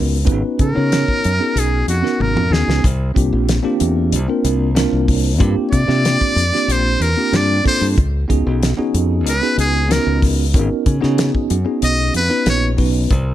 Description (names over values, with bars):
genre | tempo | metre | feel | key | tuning
electric jazz fusion | 94 BPM | 4/4 | straight | unclear | A4 = 440 Hz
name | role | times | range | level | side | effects
bell-like tine electric piano | accompaniment | 0.0-13.1 s | Bb3 to Db5 | -20 LUFS | right 1 dB | medium stereo tremolo
modern bright fingered electric bass | bass | 0.0-13.3 s | Ab1 to Db3 | -18 LUFS | equal | none
damped 70s drum kit | drums | 0.3-13.3 s | hi-hat, kick drum, snare drum, toms | -19 LUFS | equal | none
trumpet with metal mute | melody | 0.6-12.7 s | Gb4 to Eb5 | -19 LUFS | equal | none
room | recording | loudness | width
small room ambience | none | -14 LUFS | side -12 dB against mid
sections
0.0-13.3 A section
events
muted trumpet solo 0.0-13.3; drum fill 2.2-2.8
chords
0.0 Db9sus4; 2.8 C9sus4; 8.0 Db9sus4